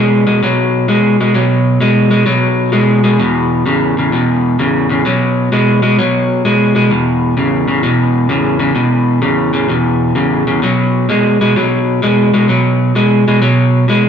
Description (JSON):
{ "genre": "blues", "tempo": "129 BPM", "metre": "4/4", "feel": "swing 67% on 8ths", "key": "unclear", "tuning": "A4 = 440 Hz", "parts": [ { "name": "electric guitar at the edge of break-up", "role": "solo", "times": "0.0-14.1 s", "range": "E2 to G#3", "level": "-10 LUFS", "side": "equal", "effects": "spring reverb" } ], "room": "wet stone room reverb, RT60 1.3 s", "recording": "band playing live in one room", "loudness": "-10 LUFS", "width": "side -7 dB against mid", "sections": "0.0-14.1 A section", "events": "none", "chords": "0.0 B5; 3.2 E5; 5.1 B5; 6.9 E5; 10.6 B5", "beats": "0.41 0.88 | 1.34 1.80 2.27 2.73 | 3.20 3.66 4.13 4.59 | 5.05 5.52 5.98 6.45 | 6.91 7.38 7.84 8.30 | 8.77 9.23 9.70 10.16 | 10.62 11.09 11.55 12.02 | 12.48 12.95 13.41 13.87" }